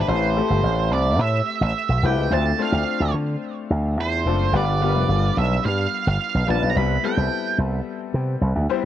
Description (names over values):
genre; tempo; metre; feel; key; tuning
polished 1980s jazz-funk pop; 108 BPM; 4/4; straight; unclear; A4 = 440 Hz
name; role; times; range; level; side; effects
octave-fuzz lead guitar; melody; 0.0-7.6 s; B4 to B5; -26 LUFS; right 9 dB; distortion, cassette tape
bright grand piano; accompaniment; 0.0-8.9 s; G3 to A5; -26 LUFS; left 8 dB; analog chorus
slap bass with an envelope filter; bass; 0.1-8.7 s; F1 to D3; -20 LUFS; equal; none
room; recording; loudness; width
light reverb; home recording on cassette; -19 LUFS; side -11 dB against mid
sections
0.1-8.9 A section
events
none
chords
0.1 Am9; 2.3 Dm7; 4.5 G7; 6.8 Cmaj7